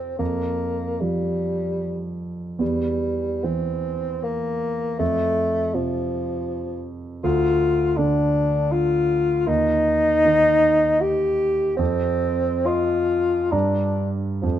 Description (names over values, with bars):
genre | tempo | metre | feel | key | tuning
classical, romantic duo for bassoon and grand piano | 64-82 BPM | 3/4 | rubato | F major | A4 = 440 Hz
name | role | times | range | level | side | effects
mellow bassoon | melody | 0.0-14.6 s | F3 to G4 | -21 LUFS | left 2 dB | none
warm grand piano | accompaniment | 0.0-14.6 s | D2 to C6 | -25 LUFS | right 3 dB | none
room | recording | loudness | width
light reverb | close, detailed microphones | -19 LUFS | side -11 dB against mid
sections
0.0-14.6 A section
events
none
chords
0.2 N.C.; 5.0 F; 7.2 N.C.; 11.8 F5; 13.5 Gm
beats
| 0.20 1.01 1.82 | 2.61 3.46 4.24 | 5.00 5.74 6.49 | 7.24 7.99 8.73 | 9.48 10.26 11.02 | 11.79 12.67 13.53 | 14.43